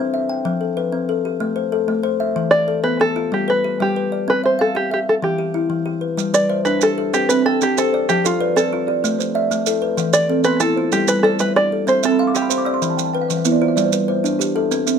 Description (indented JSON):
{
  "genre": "southern african traditional, mbira-style interlocking cycle",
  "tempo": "126 BPM (dotted quarters)",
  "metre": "12/8",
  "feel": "straight",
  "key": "G mixolydian",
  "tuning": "A4 = 441 Hz",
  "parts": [
    { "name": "kalimba", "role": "arpeggios", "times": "0.0-15.0 s", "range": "E3 to G5", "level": "-20 LUFS", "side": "left 4 dB", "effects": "none" },
    { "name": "open-back banjo", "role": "melody", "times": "2.5-12.9 s", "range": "F4 to D5", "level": "-18 LUFS", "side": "right 1 dB", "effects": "none" },
    { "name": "maracas", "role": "percussion", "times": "6.2-15.0 s", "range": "none", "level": "-25 LUFS", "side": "right 13 dB", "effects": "none" },
    { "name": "kalimba", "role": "arpeggios", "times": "6.3-15.0 s", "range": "E3 to E6", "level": "-21 LUFS", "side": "right 9 dB", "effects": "none" }
  ],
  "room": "light reverb",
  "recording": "none",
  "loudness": "-16 LUFS",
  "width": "side -7 dB against mid",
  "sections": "0.0-6.2 A section; 6.2-15.0 A section",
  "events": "kalimba fill 12.0-13.8",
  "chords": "0.5 F; 1.4 Am; 2.4 Em; 3.3 G; 4.3 C; 5.2 Em; 6.2 G; 7.1 C; 8.1 F; 9.0 Am; 10.0 Em; 10.9 G; 11.9 C; 12.8 E5; 13.8 G"
}